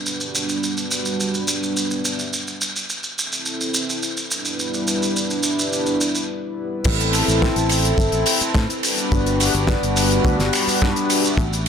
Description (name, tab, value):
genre	nu-disco, nu disco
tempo	106 BPM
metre	4/4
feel	straight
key	A dorian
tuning	A4 = 440 Hz
part	warm analog pad	accompaniment	0.0-11.3 s	G3 to E5	-22 LUFS	equal	chorus, ping-pong delay
part	damped 70s drum kit	drums	0.1-11.7 s	crash cymbal, finger snaps, hi-hat, ride cymbal, shaker, snare drum	-22 LUFS	equal	none
part	fingered electric bass	bass	6.9-11.7 s	G1 to A2	-22 LUFS	equal	none
part	kick drum	drums	6.9-11.5 s	none	-20 LUFS	equal	none
room	light reverb, small room ambience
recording	none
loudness	-18 LUFS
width	side -7 dB against mid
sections	0.0-6.9 A section; 6.9-11.7 B section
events	break 6.3-6.9; drop 6.9-11.7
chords	0.1 Gmaj7; 2.3 Am; 4.3 Em7/G; 6.9 Am; 9.1 Gmaj7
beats	| 0.06 0.63 1.19 1.76 | 2.32 2.89 3.46 4.02 | 4.59 5.15 5.72 6.29 | 6.85 7.42 7.98 8.55 | 9.12 9.68 10.25 10.81 | 11.38